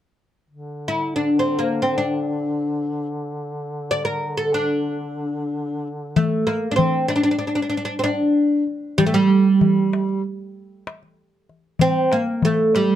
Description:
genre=Turkish makam ensemble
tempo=191 BPM (eighths)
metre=9/8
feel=straight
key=D makam ussak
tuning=A4 = 439 Hz
part: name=mellow duduk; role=drone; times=0.5-6.2 s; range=D3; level=-30 LUFS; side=equal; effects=none
part: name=oud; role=melody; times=0.9-13.0 s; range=G3 to D5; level=-19 LUFS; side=right 1 dB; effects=none
part: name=darbuka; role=percussion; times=6.2-13.0 s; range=none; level=-22 LUFS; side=left 5 dB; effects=none
room=little or no reverb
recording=dark, warm production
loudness=-18 LUFS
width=side -11 dB against mid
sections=0.5-6.2 A section; 6.2-13.0 B section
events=none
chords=none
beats=| 0.50 0.81 1.13 1.44 1.76 2.07 2.39 2.70 3.02 | 3.33 3.64 3.96 4.27 4.59 4.90 5.22 5.53 5.84 | 6.16 6.47 6.79 7.10 7.41 7.73 8.04 8.36 8.67 | 8.98 9.30 9.61 9.92 10.24 10.55 10.86 11.18 11.49 | 11.80 12.12 12.43 12.74

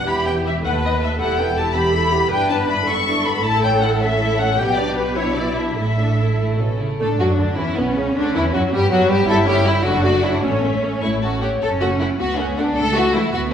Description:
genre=quick classical-period movement for string orchestra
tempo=96-109 BPM (dotted quarters)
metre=6/8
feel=rubato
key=unclear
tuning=A4 = 440 Hz
part: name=warm studio violin section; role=melody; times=0.0-13.2 s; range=B3 to C#6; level=-23 LUFS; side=left 3 dB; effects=none
part: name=rich chamber violin section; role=second line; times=0.0-13.4 s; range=A3 to C#5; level=-22 LUFS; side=left 1 dB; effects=none
part: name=rich studio viola section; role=accompaniment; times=0.0-13.2 s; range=C#3 to C#5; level=-22 LUFS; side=right 1 dB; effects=none
part: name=dark studio double bass section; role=bass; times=0.0-13.5 s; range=E1 to A2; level=-24 LUFS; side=right 2 dB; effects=none
part: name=warm studio cello section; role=bass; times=0.0-13.5 s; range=D#2 to E4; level=-24 LUFS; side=right 1 dB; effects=none
room=wet recital hall reverb, RT60 1.2 s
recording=recorded in a church or concert hall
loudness=-16 LUFS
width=side -8 dB against mid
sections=0.0-7.0 A section; 7.0-13.5 B section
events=none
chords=0.1 Em; 0.6 B7/D#; 1.2 Em; 2.3 Em7/G; 3.4 A; 4.6 G/B; 5.2 Em7/B; 5.8 Asus4; 6.4 A; 7.0 D; 7.6 Bsus24; 8.2 Dmaj9; 8.7 Gmaj7; 9.3 A7/G; 9.9 D/F#; 10.4 A; 11.6 F#m; 12.2 D; 12.8 A/C#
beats=| 0.07 0.65 | 1.21 1.76 | 2.32 2.88 | 3.44 4.01 | 4.58 5.16 | 5.78 6.39 | 7.00 7.58 | 8.15 8.72 | 9.28 9.85 | 10.44 11.03 | 11.63 12.21 | 12.78 13.34

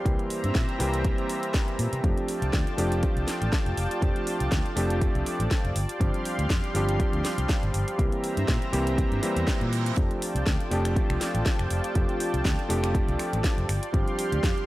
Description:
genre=nu-disco, nu disco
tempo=121 BPM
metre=4/4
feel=swing 55% on 16ths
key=F major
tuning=A4 = 441 Hz
part: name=warm electric grand piano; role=accompaniment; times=0.0-14.7 s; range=E3 to G4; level=-30 LUFS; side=equal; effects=vintage 12-bit sampler grit, analog delay
part: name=lush unison pad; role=sustained chords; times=0.0-14.7 s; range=C4 to C6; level=-33 LUFS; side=equal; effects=chorus, sidechain pumping
part: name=fingered electric bass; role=bass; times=0.1-14.5 s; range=F1 to C3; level=-28 LUFS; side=equal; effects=sidechain pumping
part: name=electronic kick drum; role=drums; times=0.1-14.5 s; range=none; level=-26 LUFS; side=equal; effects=none
part: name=house drum kit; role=drums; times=0.1-14.7 s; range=finger snaps, hi-hat, snare drum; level=-34 LUFS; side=equal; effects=none
part: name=reverse cymbal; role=sound effects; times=9.3-10.0 s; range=none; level=-40 LUFS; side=right 7 dB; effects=none
room=digital ambience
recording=dry, gritty hardware recording, transformer saturation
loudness=-24 LUFS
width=side -17 dB against mid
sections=0.0-14.7 A section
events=reverse cymbal 9.3-10.0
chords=0.1 C7; 2.0 F69; 5.8 G7sus4; 8.0 C7; 10.0 F69; 13.7 G7sus4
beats=| 0.06 0.55 1.05 1.54 | 2.04 2.53 3.03 3.53 | 4.02 4.52 5.01 5.51 | 6.00 6.50 7.00 7.49 | 7.99 8.48 8.98 9.48 | 9.97 10.47 10.96 11.46 | 11.96 12.45 12.95 13.44 | 13.94 14.44

